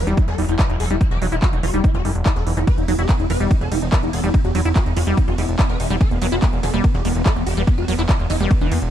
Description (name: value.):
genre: psychedelic trance.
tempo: 144 BPM.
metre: 4/4.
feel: straight.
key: E minor.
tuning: A4 = 440 Hz.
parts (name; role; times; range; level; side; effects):
swarming rave lead; melody; 0.0-8.8 s; B3 to B4; -26 LUFS; equal; chorus, phaser, sidechain pumping, digital delay.
pulsing gated texture; sustained chords; 0.0-8.9 s; E3 to B3; -29 LUFS; right 2 dB; chorus, built-in reverb, sidechain pumping.
fat analog bass; bass; 0.0-8.9 s; E1 to E2; -21 LUFS; equal; none.
liquid acid bass; riff; 0.1-8.7 s; D#3 to E4; -26 LUFS; equal; chorus, auto-pan, sidechain pumping, digital delay.
techno drum kit; drums; 0.1-8.9 s; handclaps, hi-hat, ride cymbal; -29 LUFS; equal; overdrive, studio reverb.
electronic kick drum; drums; 0.2-8.6 s; none; -18 LUFS; equal; overdrive, studio reverb.
room: little or no reverb.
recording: dark, warm production.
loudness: -16 LUFS.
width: side -10 dB against mid.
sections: 0.0-8.9 A section.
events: none.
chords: 0.0 E5.